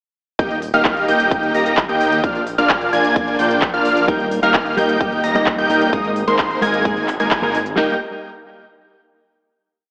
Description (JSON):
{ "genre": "EDM, festival progressive house", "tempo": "130 BPM", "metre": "4/4", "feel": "straight", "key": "Eb major", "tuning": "A4 = 440 Hz", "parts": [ { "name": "unison lead", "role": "arpeggios", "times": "0.4-7.9 s", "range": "C6 to Bb6", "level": "-23 LUFS", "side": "equal", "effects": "cassette tape, sidechain pumping, digital delay" }, { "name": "dense compressed supersaw", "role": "riff", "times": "0.4-7.9 s", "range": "Ab3 to Bb5", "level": "-21 LUFS", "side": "equal", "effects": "sidechain pumping, digital delay" }, { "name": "detuned saw bass", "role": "bass", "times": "0.4-8.0 s", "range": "Eb1 to Eb2", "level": "-31 LUFS", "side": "equal", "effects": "sidechain pumping" }, { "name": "big-room dance drum kit", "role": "drums", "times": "0.4-7.9 s", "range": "handclaps, kick drum, snare drum", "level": "-25 LUFS", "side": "equal", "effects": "none" }, { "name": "big-room dance drum kit", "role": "drums", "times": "0.4-7.8 s", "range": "handclaps, hi-hat", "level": "-25 LUFS", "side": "equal", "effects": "none" }, { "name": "clean electric guitar", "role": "accompaniment", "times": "4.1-8.0 s", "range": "Ab2 to Eb5", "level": "-24 LUFS", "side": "equal", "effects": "spring reverb, sidechain pumping, digital delay" } ], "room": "moderate lush hall reverb, RT60 2.0 s", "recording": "AM radio sound", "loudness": "-17 LUFS", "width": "mono", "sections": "0.4-7.8 drop; 7.8-9.6 final chord", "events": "drop 0.4-7.8; band accent 7.3", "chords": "0.4 Eb; 2.2 Bb; 4.1 Eb; 5.9 Absus2; 7.8 Eb" }